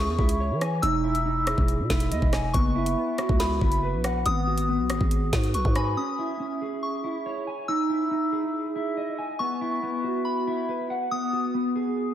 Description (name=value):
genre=hip hop, drill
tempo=140 BPM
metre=4/4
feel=half-time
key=unclear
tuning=A4 = 441 Hz
part: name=soft synth bell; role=second line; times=0.0-12.1 s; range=B5 to E6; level=-30 LUFS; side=left 2 dB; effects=chorus, tape echo
part: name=mellow electric guitar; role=arpeggios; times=0.0-12.1 s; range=B3 to G#5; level=-28 LUFS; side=right 1 dB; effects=lush chorus, low-pass filter, tape echo
part: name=growling 808-style bass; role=bass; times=0.0-6.0 s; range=E1 to E3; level=-27 LUFS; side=equal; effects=none
part: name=drill drum kit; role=drums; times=0.2-5.9 s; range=hi-hat, kick drum, rim click, snare drum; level=-26 LUFS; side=equal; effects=none
room=wet lush hall reverb, RT60 2.1 s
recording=dreamy mix soaked in reverb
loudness=-23 LUFS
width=side -10 dB against mid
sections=0.0-6.0 A section; 6.0-12.1 B section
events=none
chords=0.0 C#m; 0.8 Emaj7; 2.5 F#7sus4; 4.3 G#m7; 6.0 C#m; 7.7 Emaj7; 9.4 F#7sus4; 11.1 G#m7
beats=0.40 | 0.83 1.26 1.69 2.12 | 2.54 2.97 3.40 3.83 | 4.26 4.69 5.12 5.54 | 5.97 6.40 6.83 7.26 | 7.69 8.12 8.54 8.97 | 9.40 9.83 10.26 10.69 | 11.12 11.54 11.97